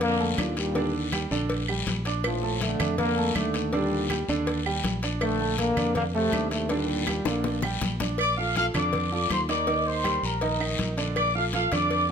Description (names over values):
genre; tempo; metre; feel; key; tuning
latin, salsa; 161 BPM; 4/4; straight; Bb major; A4 = 440 Hz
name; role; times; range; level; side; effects
warm trombone section; melody; 0.0-7.6 s; A2 to Bb3; -27 LUFS; left 1 dB; none
warm concert grand piano; accompaniment; 0.0-12.1 s; D3 to D6; -30 LUFS; right 4 dB; none
fingered electric bass; bass; 0.0-12.1 s; Bb1 to F2; -30 LUFS; equal; none
congas; percussion; 0.0-12.1 s; none; -36 LUFS; left 2 dB; none
cowbell and bongos; percussion; 0.0-12.1 s; none; -34 LUFS; left 3 dB; none
guiro; percussion; 0.0-12.1 s; none; -35 LUFS; left 7 dB; none
claves; percussion; 0.4-11.9 s; none; -37 LUFS; right 10 dB; none
mellow trumpet section; melody; 8.2-12.1 s; Bb4 to D6; -26 LUFS; left 1 dB; none
room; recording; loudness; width
moderate large studio reverb, RT60 1.1 s; none; -24 LUFS; side -7 dB against mid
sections
0.0-8.2 A section; 8.2-12.1 B section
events
drum fill 7.3-8.2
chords
0.0 Bbmaj7; 0.8 Ebmaj7; 2.2 Bbmaj7; 3.7 Ebmaj7; 5.2 Bbmaj7; 6.7 Ebmaj7; 8.2 Bbmaj7; 9.7 Ebmaj7; 11.2 Bbmaj7